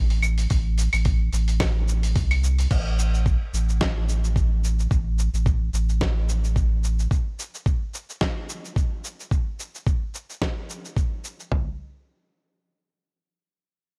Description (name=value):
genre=organic downtempo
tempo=109 BPM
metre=4/4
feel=swing 56% on 16ths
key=A minor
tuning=A4 = 441 Hz
part: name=warm sub bass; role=bass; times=0.0-7.1 s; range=A1 to C2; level=-24 LUFS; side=equal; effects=none
part: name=dusty soul sampler-style drum kit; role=drums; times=0.1-11.5 s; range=claves, crash cymbal, hi-hat, shaker, snare drum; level=-33 LUFS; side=equal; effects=small room ambience
part: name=dusty soul sampler-style drum kit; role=drums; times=0.5-11.7 s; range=kick drum, toms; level=-26 LUFS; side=equal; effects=small room ambience
room=little or no reverb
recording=none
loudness=-24 LUFS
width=mono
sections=0.0-2.7 A section; 2.7-11.5 B section; 11.5-13.7 C section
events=none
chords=none